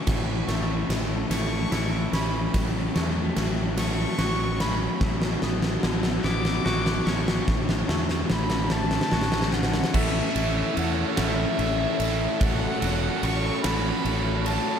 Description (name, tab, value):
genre	post-rock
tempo	49 BPM (dotted quarters)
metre	6/8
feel	straight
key	A major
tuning	A4 = 440 Hz
part	warm violin	melody	0.0-14.8 s	E5 to D6	-32 LUFS	left 1 dB	slapback echo
part	dark analog pad	sustained chords	0.0-9.9 s	D3 to A4	-37 LUFS	right 2 dB	none
part	twangy electric guitar	arpeggios	0.0-9.9 s	A2 to F#4	-35 LUFS	equal	slapback echo
part	crunchy overdriven guitar	riff	0.0-14.8 s	A2 to A4	-30 LUFS	left 7 dB	none
part	fuzz fingered electric bass	bass	0.1-14.6 s	E1 to E2	-28 LUFS	right 1 dB	overdrive
part	huge arena drum kit	drums	0.1-14.7 s	crash cymbal, kick drum, ride cymbal, snare drum	-26 LUFS	right 1 dB	none
part	tight distorted guitar	riff	9.9-14.8 s	A3 to A4	-29 LUFS	right 10 dB	distortion
room	moderate scoring stage reverb, RT60 1.9 s, small room ambience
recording	big arena sound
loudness	-22 LUFS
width	side -8 dB against mid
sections	0.0-9.9 A section; 9.9-14.8 B section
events	build-up 0.0-9.9; drum fill 0.0-9.9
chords	0.1 A; 2.5 F#m7/A; 5.0 Bmadd9/A; 7.5 Dmaj7/A; 9.9 A; 12.4 F#m